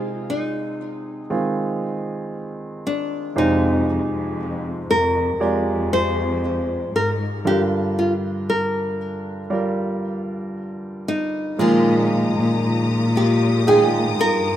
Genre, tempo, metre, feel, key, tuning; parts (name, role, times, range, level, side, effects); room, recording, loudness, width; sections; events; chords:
pop; 58 BPM; 4/4; straight; A4 = 436 Hz
warm concert grand piano; accompaniment; 0.0-14.6 s; G2 to G5; -24 LUFS; right 2 dB
nylon-string guitar; melody; 0.3-14.6 s; D4 to C5; -22 LUFS; left 1 dB
muted studio cello section; bass; 3.4-14.6 s; F2 to Bb2; -22 LUFS; left 1 dB
rich studio string section; sustained chords; 11.6-14.6 s; Bb4 to Eb6; -29 LUFS; left 4 dB
picked steel-string acoustic guitar; arpeggios; 11.6-14.6 s; Bb2 to F4; -26 LUFS; left 4 dB
light reverb; rough home demo mix; -18 LUFS; side -11 dB against mid
0.0-11.6 A section; 11.6-14.6 B section
break 7.5-11.6
0.0 Ab/C; 3.4 Fmadd9; 7.5 Gm7; 11.6 Bb7sus4